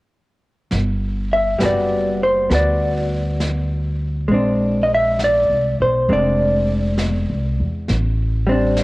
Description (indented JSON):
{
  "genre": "jazz ballad",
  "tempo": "67 BPM",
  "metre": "4/4",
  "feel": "swing 67% on 8ths",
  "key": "G major",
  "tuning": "A4 = 440 Hz",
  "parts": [
    { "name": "upright bass", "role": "bass", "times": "0.7-8.8 s", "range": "F1 to E2", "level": "-21 LUFS", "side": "equal", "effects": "none" },
    { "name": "jazz brush drum kit", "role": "drums", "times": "0.7-8.8 s", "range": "brushed snare drum, hi-hat, snare drum", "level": "-30 LUFS", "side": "equal", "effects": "none" },
    { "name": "vintage hollow-body jazz guitar", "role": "accompaniment", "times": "1.3-8.8 s", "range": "G3 to E5", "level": "-17 LUFS", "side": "equal", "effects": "cassette tape" }
  ],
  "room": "light reverb, small room reverb",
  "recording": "home recording on cassette",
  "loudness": "-16 LUFS",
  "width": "side -20 dB against mid",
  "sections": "0.7-8.8 A section",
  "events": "none",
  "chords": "0.7 Gmaj7; 4.3 Bb9; 7.9 Am7"
}